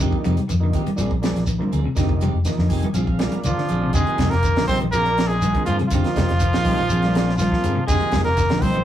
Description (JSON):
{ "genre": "afrobeat", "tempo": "122 BPM", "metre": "4/4", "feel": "straight", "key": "F dorian", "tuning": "A4 = 440 Hz", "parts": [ { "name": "overdriven combo organ", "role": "accompaniment", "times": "0.0-8.8 s", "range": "F3 to Ab5", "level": "-29 LUFS", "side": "right 2 dB", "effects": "none" }, { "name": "semi-hollow electric guitar", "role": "arpeggios", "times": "0.0-8.8 s", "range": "C3 to F3", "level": "-28 LUFS", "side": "left 2 dB", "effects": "none" }, { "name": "clean electric guitar", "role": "stabs", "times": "0.0-8.8 s", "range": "F3 to Ab4", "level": "-29 LUFS", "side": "right 2 dB", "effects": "warbly pitch drift" }, { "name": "fingered electric bass", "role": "bass", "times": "0.0-8.8 s", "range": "F1 to G2", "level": "-22 LUFS", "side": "left 1 dB", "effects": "none" }, { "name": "tight funk drum kit", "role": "drums", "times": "0.0-8.8 s", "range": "hi-hat, kick drum, snare drum", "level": "-25 LUFS", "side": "equal", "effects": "none" }, { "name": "shekere", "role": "percussion", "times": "0.0-8.8 s", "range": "none", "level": "-30 LUFS", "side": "equal", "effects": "none" }, { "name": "congas", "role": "percussion", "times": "0.2-8.7 s", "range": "none", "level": "-28 LUFS", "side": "equal", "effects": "none" }, { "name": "clear trumpet", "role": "melody", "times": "3.5-8.8 s", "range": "F4 to C5", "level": "-23 LUFS", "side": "right 2 dB", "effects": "none" }, { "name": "brilliant trombone", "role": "second line", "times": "3.5-8.8 s", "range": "F3 to C4", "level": "-30 LUFS", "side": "right 1 dB", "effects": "none" } ], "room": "moderate studio reverb, RT60 0.5 s", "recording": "rough rehearsal-room recording, warm saturation", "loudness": "-18 LUFS", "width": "side -11 dB against mid", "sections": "0.0-3.9 A section; 3.9-8.8 B section", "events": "transistor combo organ fill 2.5-3.9; drum fill 3.3-3.9", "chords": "0.0 Fm9; 1.0 Bb9; 2.0 Fm9; 3.0 Bb9; 3.9 Fm9; 4.9 Bb9; 5.9 Fm9; 6.9 Bb9; 7.9 Fm9" }